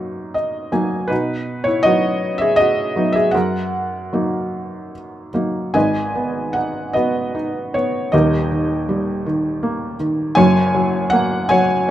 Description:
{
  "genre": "classical, lyrical solo piano",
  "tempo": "49-55 BPM (dotted quarters)",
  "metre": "6/8",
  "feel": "rubato",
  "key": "G# minor from 5.8 s",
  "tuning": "A4 = 440 Hz",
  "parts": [
    { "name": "felt-muted upright piano", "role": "solo", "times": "0.0-11.9 s", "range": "D#1 to G#5", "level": "-16 LUFS", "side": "equal", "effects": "none" }
  ],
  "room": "light reverb",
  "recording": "close, detailed microphones",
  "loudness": "-16 LUFS",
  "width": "side -12 dB against mid",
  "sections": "0.0-5.8 A section; 5.8-11.9 B section",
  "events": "felt piano fill 0.0-1.1",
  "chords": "0.0 F#6; 1.1 B; 3.4 F#6; 5.8 G#m7; 8.1 D#; 10.4 F#add9",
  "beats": "| 1.11 2.22 | 3.35 4.54 | 5.75 6.96 | 8.13 9.25 | 10.37 11.50"
}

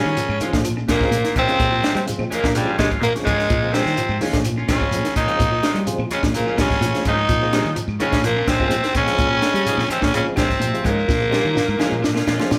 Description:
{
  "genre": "afrobeat",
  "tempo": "126 BPM",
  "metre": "4/4",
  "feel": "straight",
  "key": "Bb dorian",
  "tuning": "A4 = 440 Hz",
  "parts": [
    { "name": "breathy tenor saxophone", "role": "melody", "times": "0.0-12.5 s", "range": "G3 to Eb4", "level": "-24 LUFS", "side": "equal", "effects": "none" },
    { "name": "bright baritone saxophone", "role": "second line", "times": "0.0-12.5 s", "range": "G2 to Eb3", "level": "-30 LUFS", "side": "equal", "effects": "none" },
    { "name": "percussive tonewheel organ", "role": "accompaniment", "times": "0.0-12.6 s", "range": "Db3 to Eb4", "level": "-32 LUFS", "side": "equal", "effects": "slow rotary speaker, overdrive, chorus vibrato" },
    { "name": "electric guitar through a small old amp", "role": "arpeggios", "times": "0.0-12.6 s", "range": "Bb2 to G3", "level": "-33 LUFS", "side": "equal", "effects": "none" },
    { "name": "electric guitar at the edge of break-up", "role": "stabs", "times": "0.0-12.5 s", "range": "Ab3 to F4", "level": "-33 LUFS", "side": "equal", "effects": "none" },
    { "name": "fingered electric bass", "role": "bass", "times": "0.1-12.6 s", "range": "Ab2 to G3", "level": "-27 LUFS", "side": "equal", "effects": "none" },
    { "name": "shekere", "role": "percussion", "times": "0.1-12.6 s", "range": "none", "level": "-35 LUFS", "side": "equal", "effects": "none" },
    { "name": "compact cocktail drum kit", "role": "drums", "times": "0.2-12.6 s", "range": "hi-hat, kick drum, snare drum", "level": "-25 LUFS", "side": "equal", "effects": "none" },
    { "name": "congas", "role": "percussion", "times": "0.2-12.6 s", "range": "none", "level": "-34 LUFS", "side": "equal", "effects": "none" },
    { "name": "claves", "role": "percussion", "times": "0.3-12.4 s", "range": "none", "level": "-43 LUFS", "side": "equal", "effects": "none" }
  ],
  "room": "moderate large studio reverb, RT60 1.2 s",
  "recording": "band playing live in one room",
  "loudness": "-19 LUFS",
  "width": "mono",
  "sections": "0.0-12.6 A section",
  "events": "drum fill 11.1-12.6",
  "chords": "0.0 Bbm7",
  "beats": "0.17 0.65 1.12 | 1.60 2.07 2.55 3.02 | 3.50 3.97 4.45 4.92 | 5.40 5.87 6.34 6.82 | 7.29 7.77 8.24 8.71 | 9.19 9.66 10.14 10.61 | 11.08 11.56 12.03 12.51"
}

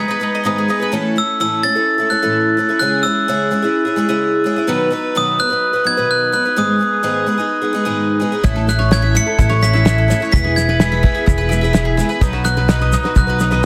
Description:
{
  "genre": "indie folk with a building arrangement",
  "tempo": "128 BPM",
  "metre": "4/4",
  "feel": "straight",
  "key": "unclear",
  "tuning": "A4 = 440 Hz",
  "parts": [
    { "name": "picked twelve-string acoustic guitar", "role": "accompaniment", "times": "0.0-13.7 s", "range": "G#2 to B4", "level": "-21 LUFS", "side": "equal", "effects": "plate reverb" },
    { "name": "mandolin", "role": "arpeggios", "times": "0.0-0.9, 8.4-13.7 s", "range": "D#4 to E5", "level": "-24 LUFS", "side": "equal", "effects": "slapback echo, plate reverb" },
    { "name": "glockenspiel with hard plastic mallets", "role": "melody", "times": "1.2-13.7 s", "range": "D#6 to C#7", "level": "-21 LUFS", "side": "equal", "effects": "slapback echo, plate reverb" },
    { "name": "upright bass", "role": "bass", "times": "8.4-13.7 s", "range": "E1 to B1", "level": "-19 LUFS", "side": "equal", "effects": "none" },
    { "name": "cloth-damped thuddy drum kit", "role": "drums", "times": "8.4-13.6 s", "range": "kick drum, snare drum", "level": "-19 LUFS", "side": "equal", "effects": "none" },
    { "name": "tube shaker", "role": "percussion", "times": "8.5-13.6 s", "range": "none", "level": "-35 LUFS", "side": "equal", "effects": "none" }
  ],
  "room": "light reverb",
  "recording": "dense, heavily limited modern master",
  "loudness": "-16 LUFS",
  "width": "mono",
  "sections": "0.9-13.7 A section",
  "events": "break 0.0-0.9",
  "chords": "0.0 G#m; 0.9 A; 2.8 C#m; 4.7 B; 6.6 G#m; 8.4 A; 10.3 E; 12.2 B",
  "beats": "0.00 0.47 | 0.94 1.41 1.88 2.35 | 2.81 3.28 3.75 4.22 | 4.69 5.16 5.63 6.10 | 6.57 7.04 7.51 7.98 | 8.45 8.92 9.39 9.86 | 10.33 10.80 11.27 11.74 | 12.22 12.69 13.16 13.63"
}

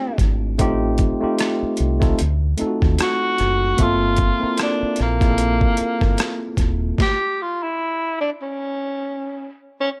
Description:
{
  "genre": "R&B, neo-soul",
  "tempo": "75 BPM",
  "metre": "4/4",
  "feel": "swing 55% on 16ths",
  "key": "unclear",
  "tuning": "A4 = 438 Hz",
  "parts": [
    { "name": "breathy tenor saxophone", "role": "melody", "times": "0.0-9.9 s", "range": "Bb3 to G4", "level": "-24 LUFS", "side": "equal", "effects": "none" },
    { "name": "tine electric piano", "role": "accompaniment", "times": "0.0-7.0 s", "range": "A3 to E5", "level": "-25 LUFS", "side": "equal", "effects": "none" },
    { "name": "deep dub fingered electric bass", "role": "bass", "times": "0.2-6.9 s", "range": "Eb1 to Eb2", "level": "-24 LUFS", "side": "equal", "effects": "none" },
    { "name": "boom bap sampler-style drum kit", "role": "drums", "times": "0.2-7.2 s", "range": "hi-hat, kick drum, rim click, snare drum", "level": "-23 LUFS", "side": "equal", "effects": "overdrive" }
  ],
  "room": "digital ambience",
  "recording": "none",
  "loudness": "-20 LUFS",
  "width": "mono",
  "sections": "0.0-10.0 A section",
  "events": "stop 7.0-10.0",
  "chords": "0.0 Bbmaj9 (rootless); 0.6 Am7b5; 2.2 D7b9; 3.8 Gm11; 7.0 N.C.",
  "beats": "| 0.59 1.39 2.19 2.99 | 3.79 4.59 5.39 6.19 | 6.99 7.79 8.59 9.39"
}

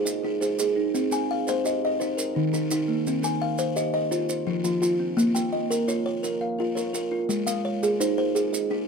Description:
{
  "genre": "southern african traditional, mbira-style interlocking cycle",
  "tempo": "113 BPM (dotted quarters)",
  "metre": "12/8",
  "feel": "straight",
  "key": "Bb dorian",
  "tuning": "A4 = 440 Hz",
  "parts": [
    { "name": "buzzing kalimba", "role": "arpeggios", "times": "0.0-8.9 s", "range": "Eb3 to Ab5", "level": "-25 LUFS", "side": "left 3 dB", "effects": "none" },
    { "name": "kalimba", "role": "arpeggios", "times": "0.0-8.9 s", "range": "Eb3 to F5", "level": "-28 LUFS", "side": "right 6 dB", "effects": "slapback echo" },
    { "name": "maracas", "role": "percussion", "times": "0.1-8.7 s", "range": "none", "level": "-33 LUFS", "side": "right 4 dB", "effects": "none" }
  ],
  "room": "light reverb",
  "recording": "dark, warm production",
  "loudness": "-23 LUFS",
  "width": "side -5 dB against mid",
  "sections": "0.0-8.9 A section",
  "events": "none",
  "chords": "0.0 Ab; 0.9 Cm; 2.0 Eb5; 3.1 Cm; 4.1 F5; 5.2 Bbm; 7.3 Ab",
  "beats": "0.42 | 0.94 1.47 2.00 2.53 | 3.06 3.59 4.12 4.64 | 5.17 5.70 6.23 6.76 | 7.29 7.82 8.35"
}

